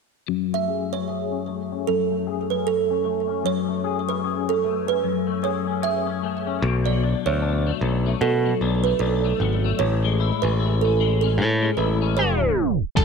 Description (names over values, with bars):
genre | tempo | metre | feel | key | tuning
indie pop, bedroom pop | 76 BPM | 4/4 | swing 60% on 16ths | F# minor | A4 = 440 Hz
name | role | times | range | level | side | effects
clean electric guitar | accompaniment | 0.3-13.0 s | F#2 to G#4 | -25 LUFS | left 11 dB | ensemble chorus, vibrato effect, low-pass filter
kalimba | second line | 0.5-12.8 s | A4 to E5 | -25 LUFS | right 11 dB | wide subtle chorus, tape echo
modern bright picked electric bass | bass | 6.6-13.0 s | E1 to B2 | -22 LUFS | equal | none
electric slide guitar | melody | 12.2-13.0 s | G#4 to A4 | -25 LUFS | equal | ensemble chorus
lo-fi sampler-style drum kit | drums | 13.0 s | hi-hat, kick drum | -18 LUFS | right 3 dB | none
room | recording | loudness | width
light reverb | 1960s-style stereo with parts hard left and right, tape stop | -20 LUFS | side -5 dB against mid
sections
0.3-13.0 A section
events
filter sweep on clean electric guitar 0.3-13.0; tape stop 12.2-13.0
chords
0.3 F#madd9; 6.6 Bm7; 9.8 Amaj7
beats
| 0.29 1.08 1.87 2.66 | 3.46 4.25 5.04 5.83 | 6.63 7.42 8.21 9.00 | 9.80 10.59 11.38 12.18 | 12.97